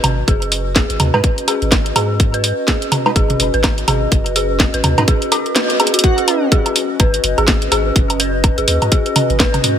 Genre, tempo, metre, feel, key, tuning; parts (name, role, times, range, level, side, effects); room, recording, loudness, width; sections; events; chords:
minimal techno; 125 BPM; 4/4; swing 59% on 16ths; G# minor; A4 = 440 Hz
punchy sub bass; bass; 0.0-9.8 s; F#1 to G#2; -20 LUFS; equal; sidechain pumping
garage drum kit; drums; 0.0-9.8 s; hi-hat, snare drum; -17 LUFS; equal
electronic toms and woodblock; percussion; 0.0-9.6 s; -20 LUFS; right 2 dB
warbly tape-like pad; texture; 0.0-9.8 s; C#4 to D#5; -21 LUFS; equal; chorus, built-in reverb, sidechain pumping
dark detuned synth bell; riff; 0.3-9.4 s; F#4 to B4; -22 LUFS; left 1 dB; chorus, sidechain pumping, ping-pong delay
electronic kick drum; drums; 0.3-9.5 s; -15 LUFS; equal
wavetable chord stab; stabs; 1.1-5.0 s; G#3 to B4; -24 LUFS; equal; ping-pong delay
airy dreamy lead; melody; 6.0-6.4 s; F#4; -20 LUFS; right 1 dB; chorus, ping-pong delay
light reverb; -13 LUFS; side -9 dB against mid
0.0-6.0 A section; 6.0-9.8 B section
band accent 5.6; drum fill 5.8; drop 6.0-9.8
0.0 G#m